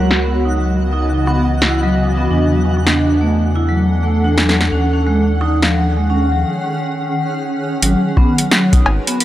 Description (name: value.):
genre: IDM.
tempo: 87 BPM.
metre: 4/4.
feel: swing 62% on 16ths.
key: G# minor.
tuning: A4 = 440 Hz.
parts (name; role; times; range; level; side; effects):
granular cloud pad; sustained chords; 0.0-9.2 s; C#3 to F#5; -20 LUFS; equal; built-in reverb.
round analog bass; bass; 0.0-9.0 s; G#1 to E2; -17 LUFS; equal; none.
twinkling granular texture; texture; 0.0-6.4 s; F#5; -30 LUFS; equal; built-in reverb.
electro analog drum machine; drums; 0.1-9.2 s; cowbell, hi-hat, rim click, snare drum; -17 LUFS; equal; low-pass filter on hats, low-pass filter on snare, low-pass filter on perc.
vibraphone with medium hard mallets; arpeggios; 0.2-9.2 s; E#3 to E4; -18 LUFS; right 1 dB; low-pass filter, analog delay.
electronic kick drum; drums; 8.2-8.8 s; none; -12 LUFS; equal; none.
room: little or no reverb.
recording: dry, gritty hardware recording.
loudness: -13 LUFS.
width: side -13 dB against mid.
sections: 0.0-7.8 A section; 7.8-9.2 B section.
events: filter sweep on drum 0.0-7.8; break 6.4-7.8.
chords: 0.0 C#m11; 2.3 E9sus4; 4.7 D#m11; 7.8 G#m11.